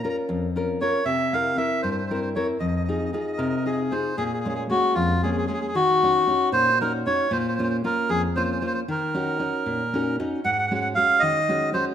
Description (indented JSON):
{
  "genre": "italian folk",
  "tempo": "77 BPM (dotted quarters)",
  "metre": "6/8",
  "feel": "straight",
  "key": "F minor, Bb minor from 4.2 s",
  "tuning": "A4 = 441 Hz",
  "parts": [
    { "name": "melodica", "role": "melody", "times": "0.0-11.9 s", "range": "F4 to Bb5", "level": "-23 LUFS", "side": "equal", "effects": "none" },
    { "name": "nylon-string guitar", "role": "accompaniment", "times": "0.0-11.9 s", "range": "F2 to Eb5", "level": "-25 LUFS", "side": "left 1 dB", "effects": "none" }
  ],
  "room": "moderate scoring stage reverb, RT60 2.0 s",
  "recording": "minimal, uncompressed stereo recording",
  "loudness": "-21 LUFS",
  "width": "side -9 dB against mid",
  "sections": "0.0-4.2 A section; 4.2-11.9 B section",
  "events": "nylon-string guitar fill 9.7-10.4",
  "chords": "0.0 Bbm; 1.1 C7; 2.6 Fm7; 4.2 Bbm7; 5.8 Ebm7; 7.3 Bbm; 8.9 Ebm7; 10.4 Ab7sus4"
}